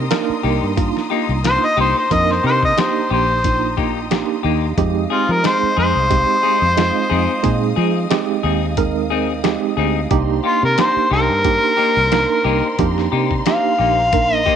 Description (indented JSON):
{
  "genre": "straight-eighth soul blues",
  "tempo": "90 BPM",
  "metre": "4/4",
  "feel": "swing 55% on 16ths",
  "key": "C minor",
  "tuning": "A4 = 439 Hz",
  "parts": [
    { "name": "mellow harmonica", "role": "melody", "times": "0.0-14.6 s", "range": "F4 to F5", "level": "-17 LUFS", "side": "left 1 dB", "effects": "overdrive" },
    { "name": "tine electric piano", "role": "accompaniment", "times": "0.0-14.6 s", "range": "Ab3 to Bb4", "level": "-21 LUFS", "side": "right 13 dB", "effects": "medium tremolo" },
    { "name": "warm symphonic string section", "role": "sustained chords", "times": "0.0-14.6 s", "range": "C5 to Eb6", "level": "-30 LUFS", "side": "left 2 dB", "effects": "none" },
    { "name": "fingered electric bass", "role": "bass", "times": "0.0-14.6 s", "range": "Bb1 to F3", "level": "-21 LUFS", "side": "left 1 dB", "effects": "none" },
    { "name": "lo-fi sampler-style drum kit", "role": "drums", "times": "0.1-14.6 s", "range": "hi-hat, kick drum, snare drum", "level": "-22 LUFS", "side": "left 4 dB", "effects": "none" },
    { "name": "clean electric guitar", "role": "stabs", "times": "0.4-14.6 s", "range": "Bb3 to Ab4", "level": "-25 LUFS", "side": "left 12 dB", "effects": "tremolo" }
  ],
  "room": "moderate spring reverb, RT60 2.2 s",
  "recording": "1960s-style stereo with parts hard left and right",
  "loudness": "-14 LUFS",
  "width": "side -8 dB against mid",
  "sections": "0.0-14.6 A section",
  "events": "none",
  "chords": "0.0 Cm7; 4.8 Fm7; 10.1 Cm7",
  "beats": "0.10 0.77 1.44 | 2.11 2.77 3.44 4.11 | 4.78 5.44 6.11 6.78 | 7.44 8.11 8.78 9.45 | 10.12 10.79 11.45 12.12 | 12.79 13.46 14.13"
}